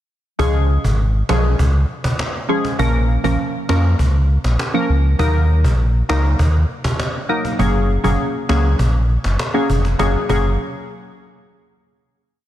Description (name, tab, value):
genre	dancehall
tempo	100 BPM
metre	4/4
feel	straight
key	F# major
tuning	A4 = 440 Hz
part	glassy wavetable pluck	accompaniment	0.4-10.5 s	E#3 to A#4	-20 LUFS	equal	chorus
part	sub bass with octave	bass	0.4-10.6 s	E#1 to E#2	-15 LUFS	equal	none
part	cajon	drums	0.4-10.4 s	none	-23 LUFS	equal	none
room	light reverb, small room ambience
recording	dense, heavily limited modern master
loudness	-15 LUFS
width	side -13 dB against mid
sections	0.4-10.0 verse; 10.0-12.4 final chord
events	none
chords	0.4 C#; 2.8 A#m; 5.2 D#m; 7.6 F#add9